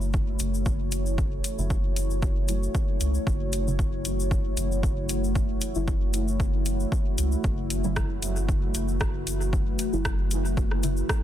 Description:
dub techno; 115 BPM; 4/4; swing 54% on 16ths; F# minor; A4 = 440 Hz
deep dark ambient pad; sustained chords; 0.0-11.2 s; A3 to C#5; -31 LUFS; left 1 dB; chorus, built-in reverb, sidechain pumping
round analog bass; bass; 0.0-11.0 s; F#1 to C#2; -28 LUFS; equal; sidechain pumping
cabasa; percussion; 0.0-11.2 s; -38 LUFS; left 5 dB
electronic kick drum; drums; 0.1-11.2 s; -27 LUFS; equal; overdrive, small room ambience
deep house drum kit; drums; 0.4-11.2 s; hi-hat, rim click; -34 LUFS; equal; overdrive, small room ambience, dub echo
deep mellow chord stab; stabs; 1.6-11.0 s; C#3 to E4; -35 LUFS; right 1 dB; chorus, phaser, dub echo
digital ambience; dense, heavily limited modern master; -24 LUFS; side -12 dB against mid
0.0-11.2 A section
filter sweep on synth stab 0.0-11.2
0.0 F#m7

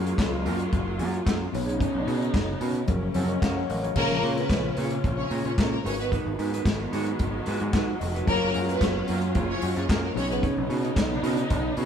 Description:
disco; 111 BPM; 4/4; straight; A4 = 439 Hz
mellow electric guitar; accompaniment; 0.0-11.9 s; A#3 to C#5; -33 LUFS; right 4 dB
tine electric piano; accompaniment; 0.0-11.9 s; B2 to F#5; -32 LUFS; left 3 dB; medium stereo tremolo, tube saturation
warm studio string section; sustained chords; 0.0-11.9 s; C#3 to E#4; -32 LUFS; right 1 dB
overdriven picked electric bass; bass; 0.0-11.9 s; E#1 to B2; -30 LUFS; equal
warm soul drum kit; drums; 0.1-11.9 s; crash cymbal, handclaps, hi-hat, kick drum, snare drum; -28 LUFS; equal
warm studio violin section; second line; 4.0-10.4 s; A#3 to C#5; -29 LUFS; equal; slapback echo
moderate stone room reverb, RT60 1.0 s; band playing live in one room; -23 LUFS; side -8 dB against mid
0.0-4.0 A section; 4.0-11.9 B section
tine electric piano fill 2.9-4.0, 7.5-8.3
0.0 F#maj9; 1.5 B69; 2.9 F#maj7; 4.0 A#m7; 5.9 G#m7; 8.3 F#maj9; 10.2 B69

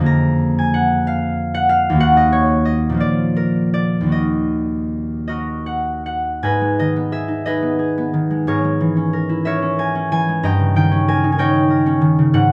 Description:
classical, solo harp piece; 50-65 BPM (dotted quarters); 6/8; rubato; Eb minor, G# minor from 6.4 s; A4 = 440 Hz
concert harp; solo; 0.0-12.5 s; Eb2 to Bb5; -18 LUFS; equal
light reverb; dark, warm production; -18 LUFS; mono
0.0-6.4 A section; 6.4-12.5 B section
0.1 Bb7/F; 2.0 Ebm; 3.0 Bb; 4.1 Ebm; 6.4 G#m; 8.5 A#m7b5/G#; 10.5 D#7/G

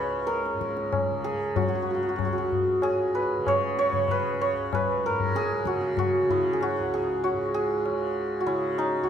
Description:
indian classical, Hindustani; 96 BPM; 4/4; straight; C# raga bhimpalasi; A4 = 440 Hz
santur; melody; 0.0-9.1 s; D#4 to D#5; -25 LUFS; right 1 dB
tanpura; drone; 0.0-9.1 s; C#2 to C#3; -34 LUFS; equal
tabla; percussion; 0.3-9.0 s; -30 LUFS; left 3 dB
wet recital hall reverb, RT60 1.8 s; -24 LUFS; side -8 dB against mid
0.0-9.1 A section

